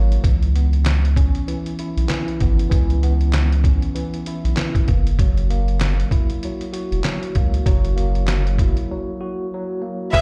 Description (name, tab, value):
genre	hip hop, boom-bap hip-hop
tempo	97 BPM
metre	4/4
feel	swing 58% on 16ths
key	unclear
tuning	A4 = 441 Hz
part	tine electric piano	accompaniment	0.0-10.2 s	E3 to F#4	-28 LUFS	equal	plate reverb
part	soft dub sub bass	bass	0.0-10.2 s	E1 to C#2	-20 LUFS	equal	none
part	trip hop sampler-style drum kit	drums	0.1-10.2 s	handclaps, hi-hat, kick drum, snare drum	-22 LUFS	equal	none
part	rich studio violin section	melody	10.1-10.2 s	E5	-17 LUFS	equal	none
part	warm saxophone section	stabs	10.1-10.2 s	E4 to B4	-26 LUFS	equal	none
room	little or no reverb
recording	played on a big sound system in a bare room, large studio reverb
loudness	-20 LUFS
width	mono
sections	0.0-10.1 A section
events	break 0.0, 8.9-10.1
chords	0.2 C#m7; 4.9 F#7